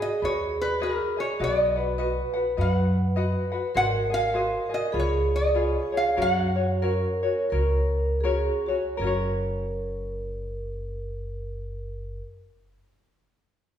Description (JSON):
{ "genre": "Hawaiian", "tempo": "77-102 BPM", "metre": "4/4", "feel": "swing 60% on 8ths", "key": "F# major", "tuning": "A4 = 440 Hz", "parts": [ { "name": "lap resonator guitar", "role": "melody", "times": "0.0-8.2 s", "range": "A#4 to F#5", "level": "-26 LUFS", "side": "equal", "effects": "none" }, { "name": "vibraphone with medium mallets", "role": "second line", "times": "0.0-12.2 s", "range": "F#4 to B4", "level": "-30 LUFS", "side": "right 2 dB", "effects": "none" }, { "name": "tenor ukulele", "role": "accompaniment", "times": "0.0-12.6 s", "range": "C#4 to F#5", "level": "-30 LUFS", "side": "left 3 dB", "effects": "none" }, { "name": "upright bass", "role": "bass", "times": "0.2-12.2 s", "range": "F#1 to F#2", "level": "-28 LUFS", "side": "equal", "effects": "none" } ], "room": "wet recital hall reverb, RT60 1.5 s", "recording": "recorded in a church or concert hall", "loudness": "-23 LUFS", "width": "side -9 dB against mid", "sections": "0.0-9.0 A section; 9.0-12.1 B section", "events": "slowing down 3.8-9.0", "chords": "0.0 G#m7; 1.4 B; 3.8 G#7; 4.9 C#7; 6.2 F#" }